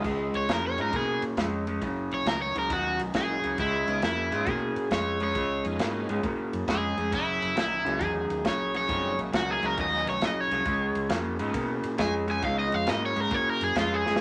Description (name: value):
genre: electric blues shuffle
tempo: 136 BPM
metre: 4/4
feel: swing 67% on 8ths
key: Db mixolydian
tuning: A4 = 438 Hz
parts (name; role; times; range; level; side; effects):
- bright tonewheel organ; accompaniment; 0.0-12.7 s; G3 to Fb5; -39 LUFS; equal; slow rotary speaker, overdrive, chorus vibrato
- electric guitar through a small old amp; riff; 0.0-14.2 s; Gb2 to Bb3; -32 LUFS; equal; none
- fingered electric bass; bass; 0.0-14.2 s; Gb1 to Cb3; -40 LUFS; equal; none
- natural country drum kit; drums; 0.0-14.2 s; crash cymbal, kick drum, ride cymbal, snare drum; -36 LUFS; equal; none
- overdriven semi-hollow guitar; melody; 0.4-14.2 s; Fb4 to Ab5; -30 LUFS; equal; none
room: wet studio reverb, RT60 0.6 s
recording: none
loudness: -28 LUFS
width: mono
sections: 0.0-14.2 A section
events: overdriven electric guitar solo 0.0-14.2; drum fill 14.0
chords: 0.0 Db7; 1.8 Gb7; 3.6 Db7; 7.1 Gb7; 10.7 Db7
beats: | 0.05 0.49 0.93 1.37 | 1.81 2.25 2.70 3.14 | 3.58 4.02 4.46 4.91 | 5.35 5.79 6.24 6.68 | 7.12 7.56 8.01 8.45 | 8.89 9.33 9.78 10.22 | 10.66 11.10 11.54 11.99 | 12.43 12.87 13.31 13.76 | 14.20